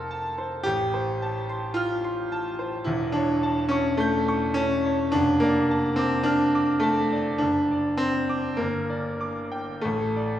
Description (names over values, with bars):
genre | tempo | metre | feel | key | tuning
classical, romantic nocturne for solo piano | 53 BPM | 4/4 | rubato | D minor | A4 = 440 Hz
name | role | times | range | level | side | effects
bright grand piano | solo | 0.0-10.4 s | E1 to G6 | -22 LUFS | equal | none
room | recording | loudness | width
wet recital hall reverb, RT60 1.3 s | heard from further back in the room | -22 LUFS | side -11 dB against mid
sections
0.0-10.4 A section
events
none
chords
0.0 F; 0.7 F/A; 2.9 A7/E; 5.1 Dm/F; 7.4 D7/F#; 8.6 Gm; 9.8 D5/A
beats
0.65 1.76 | 2.88 4.01 5.15 6.28 | 7.42 8.60 9.84